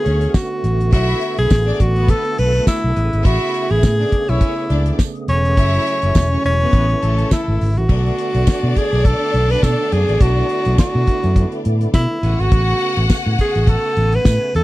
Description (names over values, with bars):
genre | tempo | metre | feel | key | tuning
disco | 104 BPM | 4/4 | swing 56% on 16ths | B dorian | A4 = 440 Hz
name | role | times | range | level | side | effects
breathy tenor saxophone | melody | 0.0-14.6 s | C#4 to B4 | -19 LUFS | equal | none
clear symphonic string section | second line | 0.0-14.5 s | A3 to F#5 | -26 LUFS | left 2 dB | none
percussive tonewheel organ | sustained chords | 0.0-14.6 s | C#3 to G#5 | -27 LUFS | right 2 dB | overdrive, chorus vibrato, slow rotary speaker
fingered electric bass | bass | 0.1-14.6 s | E1 to B2 | -17 LUFS | equal | none
damped 70s drum kit | drums | 0.1-14.6 s | crash cymbal, hi-hat, kick drum, snare drum | -15 LUFS | equal | none
tambourine | percussion | 0.3-14.4 s | none | -34 LUFS | right 23 dB | none
room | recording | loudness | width
little or no reverb | dry, close 1970s-style studio recording | -14 LUFS | side -17 dB against mid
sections
0.0-7.9 A section; 7.9-14.6 B section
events
none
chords
0.0 Bm7; 3.0 Amaj9; 5.6 F#m7; 6.7 Amaj7; 7.9 Bm7; 12.2 Amaj9